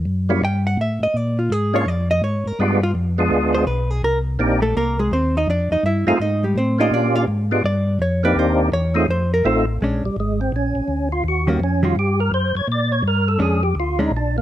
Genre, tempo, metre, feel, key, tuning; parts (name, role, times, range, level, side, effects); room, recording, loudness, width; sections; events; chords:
soul jazz organ trio; 167 BPM; 4/4; swing 64% on 8ths; Bb mixolydian; A4 = 441 Hz
mellow tonewheel organ; bass; 0.0-14.4 s; Ab1 to Bb2; -20 LUFS; equal; chorus vibrato, stopped rotary speaker
percussive tonewheel organ; melody; 0.3-14.4 s; G3 to D5; -20 LUFS; right 1 dB; slow rotary speaker, overdrive, chorus vibrato, plate reverb
hollow-body jazz guitar; accompaniment; 0.4-14.1 s; Eb3 to G5; -21 LUFS; equal
light reverb; -17 LUFS; side -12 dB against mid
0.0-9.8 A section; 9.8-14.4 A section
hollow-body jazz guitar solo 0.0-9.8; tonewheel organ solo 9.8-14.4
0.0 Edim7; 1.2 Bb7#9; 2.6 G7b9; 4.0 Cm7; 5.5 F7#9; 6.9 Bb7#9; 7.6 G5; 8.4 Cm7; 9.1 F7; 9.8 Bb7#9; 11.2 Eb7#9; 12.7 Bb7#9